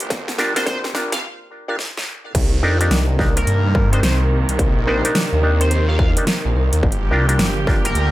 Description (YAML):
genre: glitch hop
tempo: 107 BPM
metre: 4/4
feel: swing 63% on 16ths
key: C minor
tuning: A4 = 439 Hz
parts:
  - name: rich studio string section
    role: sustained chords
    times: 0.0-8.1 s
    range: C3 to G4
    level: -26 LUFS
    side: right 2 dB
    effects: vintage 12-bit sampler grit, sidechain pumping
  - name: phased detuned saw bass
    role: bass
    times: 0.0-8.1 s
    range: G1 to G2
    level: -18 LUFS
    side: equal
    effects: phaser, high-pass filter
  - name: dubstep drum kit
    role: drums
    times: 0.0-8.1 s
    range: crash cymbal, hi-hat, rim click, snare drum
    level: -23 LUFS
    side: equal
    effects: high-pass filter on hats, small room ambience, high-pass filter on snare, high-pass filter on cymbals
  - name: electronic kick drum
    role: drums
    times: 0.1-7.8 s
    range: none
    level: -19 LUFS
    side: equal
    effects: distortion, small room ambience
  - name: auto-wah clav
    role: stabs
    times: 0.4-7.9 s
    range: D4 to Bb4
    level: -23 LUFS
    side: equal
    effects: overdrive, vintage 12-bit sampler grit, sidechain pumping, digital delay
  - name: sync lead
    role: melody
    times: 0.6-8.1 s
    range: Bb4 to F5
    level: -26 LUFS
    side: equal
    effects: chorus, digital delay
room: light reverb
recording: high-pass filter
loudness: -16 LUFS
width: side -16 dB against mid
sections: 0.0-2.3 A section; 2.3-8.1 B section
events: build-up 0.0-2.3; drum fill 0.0-1.2, 1.8-2.3; filter sweep 0.0-2.3; break 1.2-2.3; drop 2.3-8.1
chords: 0.0 Gm7; 2.3 Cm7; 6.8 Gm7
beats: | 0.10 0.67 1.23 1.79 | 2.35 2.91 3.47 4.03 | 4.59 5.15 5.71 6.27 | 6.83 7.39 7.96